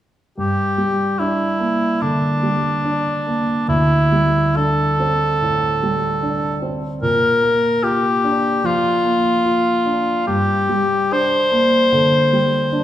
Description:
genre	classical, impressionist duo for cor anglais and grand piano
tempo	73 BPM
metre	4/4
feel	rubato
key	G dorian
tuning	A4 = 441 Hz
part	warm cor anglais	melody	0.4-12.8 s	D4 to C5	-17 LUFS	left 1 dB	none
part	warm concert grand piano	accompaniment	0.4-12.8 s	D2 to F4	-19 LUFS	right 1 dB	none
room	wet recital hall reverb, RT60 1.5 s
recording	recorded in a church or concert hall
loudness	-15 LUFS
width	side -12 dB against mid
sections	0.4-12.8 A section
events	none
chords	0.4 Gm; 3.7 D9sus4; 7.0 Bb; 10.3 Gm

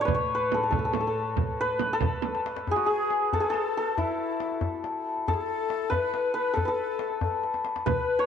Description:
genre	Persian modal ensemble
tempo	93 BPM (dotted quarters)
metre	6/8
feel	straight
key	A dastgah mahur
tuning	A4 = 440 Hz
part	santur	melody	0.0-8.3 s	E4 to C#5	-27 LUFS	left 1 dB	none
part	dark chamber cello section	drone	0.0-2.7 s	A2	-39 LUFS	equal	none
part	frame drum	percussion	0.1-2.3, 7.9-8.0 s	none	-31 LUFS	right 8 dB	none
part	tombak	percussion	0.1-8.1 s	none	-33 LUFS	left 2 dB	none
part	breathy bright ney	second line	2.7-8.3 s	E4 to B4	-31 LUFS	left 10 dB	slapback echo
room	moderate spring reverb, RT60 2.2 s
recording	1960s-style stereo with parts hard left and right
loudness	-25 LUFS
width	side -8 dB against mid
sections	0.0-2.7 A section; 2.7-8.3 B section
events	drum fill 2.3-2.7, 7.4-7.9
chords	none

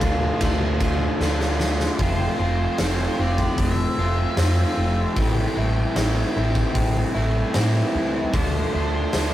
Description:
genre	rock, shoegaze and dream pop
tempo	76 BPM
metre	4/4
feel	straight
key	unclear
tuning	A4 = 440 Hz
part	octave-fuzz lead guitar	melody	0.0-9.3 s	C5 to A5	-33 LUFS	left 2 dB	distortion
part	overdriven electric guitar	riff	0.0-9.3 s	A2 to F4	-23 LUFS	equal	none
part	fingered electric bass	bass	0.0-9.3 s	F1 to A2	-23 LUFS	equal	none
part	big rock drum kit	drums	0.0-9.3 s	hi-hat, kick drum, ride cymbal, snare drum	-26 LUFS	equal	none
room	wet studio ambience, RT60 0.5 s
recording	rough rehearsal-room recording, warm saturation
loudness	-19 LUFS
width	side -13 dB against mid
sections	0.0-2.0 A section; 2.0-9.3 B section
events	drum fill 1.2-2.0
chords	0.0 Dm; 2.0 Fmaj7; 5.2 Am7; 8.3 Dm7

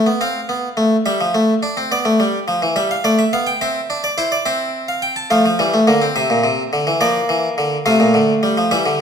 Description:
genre	classical, baroque-style 3-part fugue for harpsichord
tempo	70 BPM (dotted quarters)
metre	12/8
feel	straight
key	unclear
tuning	A4 = 440 Hz
part	harpsichord	solo	0.0-9.0 s	Bb2 to A5	-14 LUFS	equal	none
room	moderate recital hall reverb, RT60 1.6 s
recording	none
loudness	-15 LUFS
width	side -7 dB against mid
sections	0.0-9.0 A section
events	none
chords	0.0 Dm7 (rootless); 1.9 G7; 3.6 C; 5.3 Gm7 (rootless)

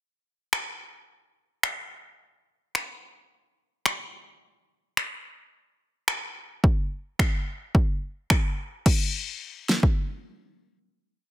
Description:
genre	dance-pop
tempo	108 BPM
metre	4/4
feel	straight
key	none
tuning	none
part	deep house drum kit	drums	0.5-10.0 s	crash cymbal, finger snaps, kick drum, snare drum	-23 LUFS	equal	overdrive, soft clipping on snare
room	little or no reverb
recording	dense, heavily limited modern master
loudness	-24 LUFS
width	side -16 dB against mid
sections	0.0-8.9 verse; 8.9-11.1 final hit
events	none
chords	none

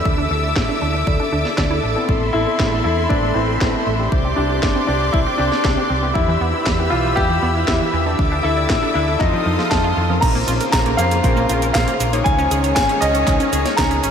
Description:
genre	italo disco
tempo	118 BPM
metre	4/4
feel	straight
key	A minor, Bb minor from 10.2 s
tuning	A4 = 439 Hz
part	clear symphonic string section	sustained chords	0.0-14.1 s	Db3 to E6	-22 LUFS	equal	none
part	chorused polysynth	stabs	0.0-14.0 s	B3 to D5	-25 LUFS	left 3 dB	cassette tape, ping-pong delay
part	fingered electric bass	bass	0.1-14.1 s	G1 to F2	-22 LUFS	equal	none
part	electronic kick drum	drums	0.1-13.9 s	none	-21 LUFS	equal	none
part	analog pluck	arpeggios	0.2-14.1 s	Eb3 to D5	-27 LUFS	right 3 dB	chorus, vintage 12-bit sampler grit, ping-pong delay
part	house drum kit	drums	0.6-14.1 s	cabasa, crash cymbal, handclaps, hi-hat, snare drum	-25 LUFS	equal	low-pass filter on snare, low-pass filter on hats, low-pass filter on cymbals, low-pass filter on perc, low-pass filter on room
part	warm baby grand piano	melody	2.3-14.1 s	C4 to Bb5	-21 LUFS	left 1 dB	analog delay
room	wet huge ambient reverb, RT60 8.5 s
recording	dreamy mix soaked in reverb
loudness	-15 LUFS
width	side -7 dB against mid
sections	0.0-10.2 A section; 10.2-14.1 B section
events	filter sweep on synth arpeggio sound 0.0-10.2; filter sweep on analog polysynth 0.0-10.2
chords	0.1 Dsus2; 2.1 Amadd9; 4.1 Csus2; 6.2 Em; 8.2 Dsus2; 9.2 F7; 10.2 Bbmadd9; 12.3 Dbsus2

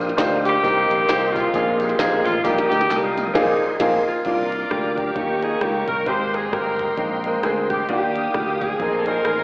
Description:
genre	uptempo gospel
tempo	132 BPM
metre	4/4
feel	swing 59% on 8ths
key	Eb major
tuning	A4 = 440 Hz
part	bright saxophone section	melody	0.0-9.4 s	Ab3 to C5	-23 LUFS	equal	slapback echo
part	bright upright piano	accompaniment	0.0-9.4 s	Ab2 to C5	-22 LUFS	equal	slapback echo
part	tonewheel organ	sustained chords	0.0-9.4 s	D4 to Eb6	-28 LUFS	equal	slow rotary speaker, overdrive, chorus vibrato
part	fingered electric bass	bass	0.0-9.4 s	G1 to Eb2	-30 LUFS	equal	none
part	tambourine and handclaps	percussion	0.0-3.3 s	none	-32 LUFS	equal	none
part	minimal click drum kit	drums	0.1-9.4 s	crash cymbal, hi-hat, kick drum, rim click, snare drum, toms	-28 LUFS	equal	overdrive
part	bright alto saxophone	melody	4.1-9.4 s	F4 to C5	-25 LUFS	equal	none
part	warm studio string section	sustained chords	4.2-9.4 s	D5 to Eb6	-32 LUFS	equal	none
room	light reverb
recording	live gig heard through the venue's PA, recital hall reverb, AM radio sound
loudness	-18 LUFS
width	side -28 dB against mid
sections	0.0-4.3 A section; 4.3-9.4 B section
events	drum fill 2.4-4.3; band accent 3.3-4.3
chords	0.0 Ebmaj9; 0.6 Cm7; 1.5 Bb9sus4; 2.4 Eb/Bb; 3.3 Bb9sus4; 4.3 Cm11; 5.2 Eb7; 6.1 Abmaj9; 7.9 Ebmaj9; 8.8 Bb9sus4

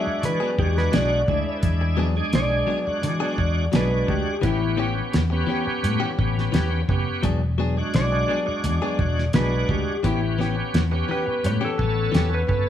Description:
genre	straight-eighth soul blues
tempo	86 BPM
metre	4/4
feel	straight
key	E mixolydian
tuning	A4 = 439 Hz
part	clean lap steel guitar	melody	0.0-12.7 s	E4 to E5	-26 LUFS	left 1 dB	slapback echo
part	bright tonewheel organ	accompaniment	0.0-12.7 s	G#3 to A4	-27 LUFS	right 3 dB	slow rotary speaker, overdrive, chorus vibrato
part	direct-recorded clean electric guitar	stabs	0.0-12.5 s	E3 to G#4	-30 LUFS	left 5 dB	none
part	vintage muted fingered electric bass	bass	0.1-12.6 s	E1 to E3	-23 LUFS	left 1 dB	none
part	cloth-damped thuddy drum kit	drums	0.2-12.7 s	hi-hat, kick drum, snare drum	-25 LUFS	equal	none
room	light reverb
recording	studio ambience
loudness	-20 LUFS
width	side -10 dB against mid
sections	0.0-12.7 A section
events	none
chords	0.0 E9; 4.4 A9; 7.2 E9; 10.0 A9

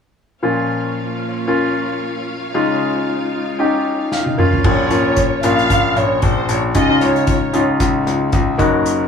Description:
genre	piano-driven pop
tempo	114 BPM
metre	4/4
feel	swing 56% on 16ths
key	unclear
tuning	A4 = 439 Hz
part	clear concert grand piano	accompaniment	0.4-9.1 s	Bb2 to F5	-17 LUFS	left 2 dB	none
part	rich studio string section	sustained chords	0.4-4.6 s	Ab3 to F5	-25 LUFS	right 1 dB	none
part	unplugged drum kit	drums	4.1-9.0 s	crash cymbal, hi-hat, kick drum, snare drum, toms	-19 LUFS	equal	none
part	dark studio violin section	melody	4.6-7.5 s	C5 to F5	-19 LUFS	equal	none
part	clear concert grand piano	bass	4.6-9.0 s	Gb1 to Db2	-19 LUFS	left 2 dB	none
room	moderate small room reverb, RT60 0.5 s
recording	band playing live in one room, small room reverb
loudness	-14 LUFS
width	side -6 dB against mid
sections	0.4-4.6 A section; 4.6-9.1 B section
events	grand piano fill 3.9-4.6; drum fill 4.1-4.6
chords	0.4 Bbm; 2.5 Dbadd9; 4.4 Bbm; 6.8 Dbadd9

